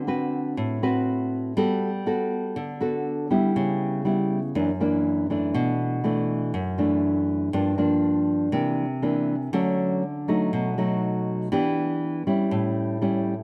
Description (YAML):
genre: bossa nova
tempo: 121 BPM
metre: 4/4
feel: straight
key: D major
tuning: A4 = 440 Hz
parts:
  - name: nylon-string guitar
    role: solo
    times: 0.0-13.4 s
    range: F#2 to B4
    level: -25 LUFS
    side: equal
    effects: none
room: wet plate reverb, RT60 2.8 s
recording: none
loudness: -25 LUFS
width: mono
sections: 0.0-13.4 A section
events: none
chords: 0.0 D6; 1.6 Gmaj9; 3.6 C#m7b5; 4.5 F#7b13; 5.5 Bm7; 7.5 Gm7; 8.5 C9; 9.5 Dmaj7; 10.5 B7; 11.5 Em7; 12.5 A7